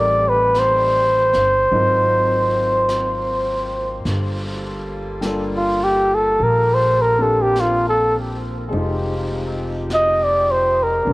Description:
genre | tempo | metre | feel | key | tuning
jazz ballad | 51 BPM | 4/4 | swing 68% on 8ths | unclear | A4 = 438 Hz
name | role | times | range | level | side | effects
clear flugelhorn | melody | 0.0-11.1 s | F4 to Eb5 | -16 LUFS | equal | cassette tape, tape echo
clear concert grand piano | accompaniment | 0.0-11.1 s | Gb3 to Bb4 | -27 LUFS | left 2 dB | none
mellow saxophone section | sustained chords | 0.0-11.1 s | D3 to A4 | -31 LUFS | equal | none
upright bass | bass | 0.0-11.1 s | E1 to Bb1 | -24 LUFS | equal | none
vintage brush drum kit | drums | 0.5-11.1 s | brushed snare drum, hi-hat, snare drum | -36 LUFS | equal | cassette tape
room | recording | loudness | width
moderate spring reverb, RT60 2.4 s | home recording on cassette | -16 LUFS | side -21 dB against mid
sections
0.0-11.1 A section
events
flugelhorn solo 0.0-11.1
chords
0.0 Am7b5; 1.7 Ab13; 4.1 Gm9; 8.7 Fm9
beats
0.54 1.71 2.88 | 4.05 5.22 6.39 7.56 | 8.73 9.91 11.09

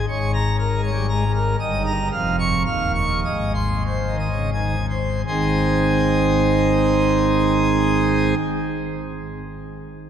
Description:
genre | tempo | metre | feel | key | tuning
classical, organ toccata | 79-120 BPM | 3/4 | straight | Ab major | A4 = 439 Hz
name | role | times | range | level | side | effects
pipe organ, plenum | solo | 0.0-8.3 s | Eb1 to Db6 | -18 LUFS | equal | none
room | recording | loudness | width
wet cathedral reverb, RT60 5.4 s | none | -18 LUFS | side -8 dB against mid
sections
0.0-5.3 A section; 5.3-9.8 B section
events
slowing down 0.8-5.3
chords
0.1 Bbm7/Ab; 1.6 Eb/G; 2.1 Db/F; 2.7 Ebsus2; 3.2 Ab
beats
| 0.09 0.59 1.09 | 1.60 2.12 2.67 | 3.25 3.87 4.54 | 5.27 6.02 6.78 | 7.53 8.28

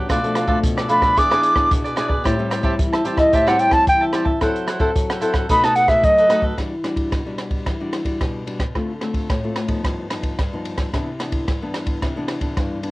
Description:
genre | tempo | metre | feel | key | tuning
samba and choro | 111 BPM | 4/4 | straight | E minor | A4 = 440 Hz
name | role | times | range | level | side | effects
cavaquinho | accompaniment | 0.0-6.6 s | D#4 to A5 | -24 LUFS | right 2 dB | none
nylon-string guitar | accompaniment | 0.0-12.9 s | G2 to A4 | -23 LUFS | left 2 dB | none
open jazz drum kit | drums | 0.1-12.9 s | hi-hat, kick drum, ride cymbal, rim click | -23 LUFS | equal | cassette tape
wooden flute | melody | 0.9-6.4 s | D#5 to D6 | -14 LUFS | equal | cassette tape
room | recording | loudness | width
light reverb | home recording on cassette | -17 LUFS | side -20 dB against mid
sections
0.0-6.6 A section; 6.6-12.9 B section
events
flute solo 0.0-6.6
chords
0.1 Bm7b5; 1.2 E7; 2.3 Am7; 4.4 F#m7b5; 5.5 B7; 6.6 Em9; 8.8 Dm7; 9.8 Gaug7; 10.9 Cmaj9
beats
| 0.10 0.64 1.18 1.72 | 2.26 2.79 3.33 3.87 | 4.41 4.95 5.50 6.04 | 6.58 7.12 7.67 8.21 | 8.75 9.30 9.84 10.39 | 10.93 11.48 12.03 12.57

